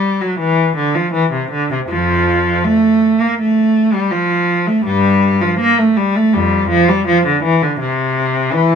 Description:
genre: classical, baroque-style suite movement for unaccompanied cello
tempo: 82 BPM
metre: 4/4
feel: rubato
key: unclear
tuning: A4 = 440 Hz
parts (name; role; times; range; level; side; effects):
- rich cello; solo; 0.0-8.8 s; F2 to Bb3; -12 LUFS; equal; none
room: light reverb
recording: minimal, uncompressed stereo recording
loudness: -12 LUFS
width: side -7 dB against mid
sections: 0.0-8.8 A section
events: none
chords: none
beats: 0.40 1.14 | 1.91 2.65 3.38 4.11 | 4.84 5.58 6.33 7.06 | 7.79 8.51

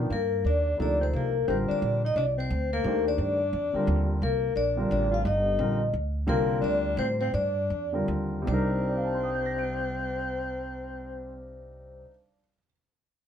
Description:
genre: modal jazz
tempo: 149-175 BPM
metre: 3/4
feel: swing 63% on 8ths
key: C dorian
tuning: A4 = 436 Hz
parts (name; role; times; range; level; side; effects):
- dark concert grand piano; accompaniment; 0.0-12.7 s; C3 to D7; -31 LUFS; equal; none
- upright bass; bass; 0.0-12.0 s; G1 to A2; -30 LUFS; equal; none
- vibraphone with soft mallets; melody; 0.1-12.0 s; Bb4 to F5; -30 LUFS; left 1 dB; plate reverb
- growling alto saxophone; second line; 0.1-11.7 s; Bb3 to F4; -32 LUFS; left 4 dB; none
room: moderate small room reverb, RT60 0.5 s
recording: none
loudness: -25 LUFS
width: side -9 dB against mid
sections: 0.1-8.5 A section; 8.5-10.9 B section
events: slowing down 6.3-8.5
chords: 0.1 Cm9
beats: | 0.10 0.44 0.79 | 1.13 1.47 1.81 | 2.16 2.50 2.84 | 3.19 3.53 3.87 | 4.22 4.56 4.90 | 5.25 5.59 5.93 | 6.28 6.62 6.97 | 7.33 7.69 8.07 | 8.47 8.87 9.27 | 9.68 10.08 10.49

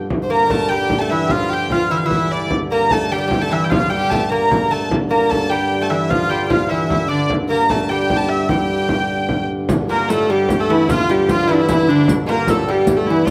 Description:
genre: medieval dance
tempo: 100 BPM (dotted quarters)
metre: 6/8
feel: straight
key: G dorian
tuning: A4 = 436 Hz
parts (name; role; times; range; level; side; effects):
- pedal harmonium; drone; 0.0-13.3 s; G2 to D3; -26 LUFS; equal; none
- frame drum; percussion; 0.1-13.3 s; none; -25 LUFS; equal; none
- rich fiddle; second line; 0.2-13.3 s; G3 to C5; -25 LUFS; equal; none
- rich hurdy-gurdy; melody; 0.3-13.3 s; D4 to Bb5; -21 LUFS; equal; none
- lute; second line; 0.3-13.3 s; D2 to Bb3; -25 LUFS; equal; none
- riq; percussion; 9.7-13.3 s; none; -28 LUFS; equal; none
room: moderate recital hall reverb, RT60 1.5 s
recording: none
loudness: -17 LUFS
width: mono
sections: 0.1-9.7 A section; 9.7-13.3 A section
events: none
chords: none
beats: | 0.10 0.71 | 1.31 1.91 | 2.51 3.11 | 3.71 4.31 | 4.91 5.50 | 6.10 6.70 | 7.30 7.90 | 8.50 9.09 | 9.69 10.29 | 10.88 11.48 | 12.08 12.67 | 13.27

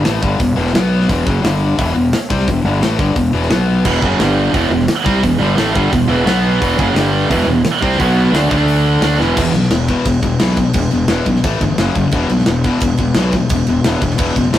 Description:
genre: heavy metal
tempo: 174 BPM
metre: 4/4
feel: straight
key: E minor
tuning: A4 = 440 Hz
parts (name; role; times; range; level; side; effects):
- high-gain distorted guitar; riff; 0.0-14.6 s; E2 to D4; -17 LUFS; left 3 dB; distortion
- fuzz fingered electric bass; bass; 0.0-14.6 s; E1 to D2; -17 LUFS; equal; overdrive
- tight metal drum kit; drums; 0.0-14.6 s; crash cymbal, hi-hat, kick drum, snare drum; -19 LUFS; equal; none
- heavy high-gain guitar; riff; 3.9-9.4 s; E2 to D4; -16 LUFS; right 5 dB; distortion
room: light reverb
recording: rough rehearsal-room recording, warm saturation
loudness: -12 LUFS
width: side -12 dB against mid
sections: 0.0-9.4 A section; 9.4-14.6 B section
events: drum fill 9.2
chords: 0.0 Em; 0.7 B5; 1.1 E5; 1.4 G5; 1.8 Em; 3.5 B5; 3.9 E5; 4.2 G5; 4.5 Em; 6.3 B5; 6.6 E5; 7.0 G5; 7.3 Em; 8.0 B5; 8.3 D5; 9.0 E5; 11.4 A5; 11.8 F#5; 12.1 E5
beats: 0.05 0.40 0.74 | 1.09 1.43 1.78 2.12 | 2.47 2.81 3.16 3.50 | 3.85 4.20 4.54 4.88 | 5.23 5.57 5.92 6.26 | 6.61 6.95 7.30 7.64 | 7.99 8.33 8.68 9.02 | 9.37 9.71 10.06 10.40 | 10.74 11.09 11.43 11.78 | 12.12 12.47 12.81 13.16 | 13.50 13.85 14.19 14.53

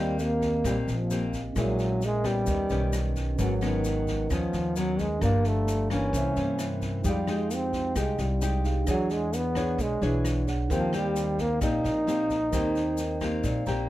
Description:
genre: bossa nova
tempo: 131 BPM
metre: 4/4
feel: straight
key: unclear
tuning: A4 = 440 Hz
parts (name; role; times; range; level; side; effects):
- breathy trombone; melody; 0.0-13.9 s; Eb3 to Eb4; -28 LUFS; equal; plate reverb
- mellow tine electric piano; accompaniment; 0.0-13.9 s; C4 to Bb5; -36 LUFS; right 5 dB; none
- nylon-string guitar; accompaniment; 0.0-13.9 s; G2 to C#5; -30 LUFS; left 2 dB; none
- upright bass; bass; 0.0-13.9 s; G1 to G2; -30 LUFS; equal; none
- swinging big-band drum kit; drums; 0.2-13.7 s; kick drum, rim click, snare drum; -36 LUFS; equal; none
- tube shaker; percussion; 0.2-13.9 s; none; -45 LUFS; left 6 dB; none
room: light reverb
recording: none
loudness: -24 LUFS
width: side -15 dB against mid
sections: 0.0-13.9 A section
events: tine electric piano fill 13.4-13.9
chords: 0.0 Eb6; 1.6 Bbm7b5; 2.5 Ebaug7; 3.4 Abm11; 5.2 Gm7; 6.1 C7b9; 7.0 Fm9; 8.9 E13; 10.7 Eb6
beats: 0.19 0.64 1.10 | 1.56 2.02 2.47 2.93 | 3.39 3.85 4.30 4.76 | 5.22 5.67 6.13 6.59 | 7.05 7.50 7.96 8.42 | 8.87 9.33 9.79 10.24 | 10.70 11.16 11.62 12.07 | 12.53 12.98 13.44

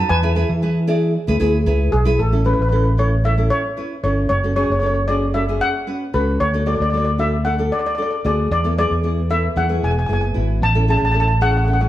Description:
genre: calypso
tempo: 114 BPM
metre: 4/4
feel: straight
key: A major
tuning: A4 = 445 Hz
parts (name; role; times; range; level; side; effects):
- nylon-string guitar; accompaniment; 0.0-11.9 s; B3 to D5; -22 LUFS; equal; none
- steel pan; melody; 0.1-11.9 s; G#4 to A5; -21 LUFS; left 1 dB; tape echo
- fingered electric bass; bass; 0.1-11.9 s; E1 to E3; -18 LUFS; equal; none
room: wet stone room reverb, RT60 1.2 s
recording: band playing live in one room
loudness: -16 LUFS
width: side -14 dB against mid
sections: 0.0-2.2 A section; 2.2-11.9 B section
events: none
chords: 0.1 E7; 2.2 A; 4.3 F#m; 6.4 D; 8.5 Esus4; 9.6 Eadd9; 10.6 A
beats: | 0.09 0.62 1.14 1.67 | 2.19 2.72 3.25 3.77 | 4.30 4.83 5.35 5.88 | 6.41 6.93 7.46 7.99 | 8.52 9.04 9.57 10.10 | 10.63 11.15 11.68

